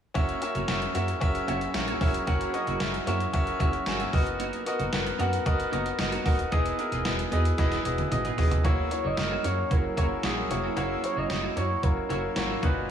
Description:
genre	1980s-style pop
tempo	113 BPM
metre	4/4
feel	straight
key	unclear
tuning	A4 = 440 Hz
part	clear concert grand piano	accompaniment	0.1-12.9 s	A#2 to G#5	-29 LUFS	left 1 dB	none
part	sweeping resonant pad	sustained chords	0.2-12.9 s	D#3 to A#4	-38 LUFS	right 2 dB	chorus
part	twelve-string electric guitar	riff	0.2-12.8 s	A#3 to G#4	-36 LUFS	right 4 dB	analog chorus, tape echo
part	solid FM bass	bass	0.2-12.9 s	D#1 to F#2	-32 LUFS	right 1 dB	none
part	clean 12-bit digital drum machine	drums	0.2-12.8 s	hi-hat, kick drum, snare drum, toms	-28 LUFS	equal	gated reverb
part	expressive portamento lead	melody	8.9-12.6 s	A#4 to D#5	-33 LUFS	right 2 dB	chorus, tape echo
room	light reverb, digital ambience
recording	small room ambience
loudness	-24 LUFS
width	side -9 dB against mid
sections	0.2-8.6 A section; 8.6-12.9 B section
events	grand piano fill 3.6-4.4; drum fill 7.6-8.6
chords	0.2 F#7; 4.1 Bmaj7/F#; 6.5 Emaj7; 8.6 F#7

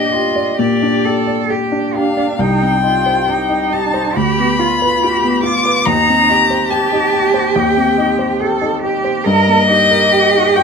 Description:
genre	classical, slow romantic movement for piano trio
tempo	69 BPM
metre	4/4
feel	rubato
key	unclear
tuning	A4 = 439 Hz
part	dark violin	melody	0.0-10.6 s	D5 to D6	-15 LUFS	left 4 dB	none
part	warm cello	second line	0.0-10.6 s	D4 to Bb4	-18 LUFS	right 7 dB	none
part	warm grand piano	accompaniment	0.0-10.6 s	C2 to D5	-16 LUFS	left 1 dB	none
room	moderate studio reverb, RT60 0.5 s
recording	minimal, uncompressed stereo recording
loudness	-12 LUFS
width	side -5 dB against mid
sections	0.0-10.6 A section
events	none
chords	0.0 Gm/Bb; 2.4 Cm; 4.2 Bdim/D; 5.9 Cm/Eb; 9.2 Eb/G

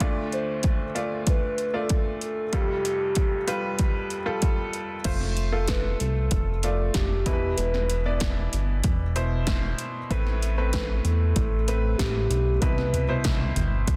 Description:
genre	piano-driven pop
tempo	95 BPM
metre	4/4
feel	straight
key	unclear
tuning	A4 = 440 Hz
part	bright upright piano	accompaniment	0.0-14.0 s	F1 to D5	-33 LUFS	equal	none
part	deep house drum kit	drums	0.0-14.0 s	crash cymbal, hi-hat, kick drum, snare drum, toms	-29 LUFS	equal	overdrive
part	hollow clarinet-like synth lead	melody	0.3-13.2 s	G4 to C5	-32 LUFS	equal	chorus
part	chorused synth bass	bass	5.0-14.0 s	E1 to E2	-28 LUFS	equal	none
room	light reverb, digital ambience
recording	dense, heavily limited modern master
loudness	-25 LUFS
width	mono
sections	0.0-5.1 A section; 5.1-14.0 B section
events	none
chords	0.0 Dm; 2.5 Fadd9; 5.1 F; 7.3 Cmaj7/E; 10.1 Amadd9; 12.6 Cmaj7

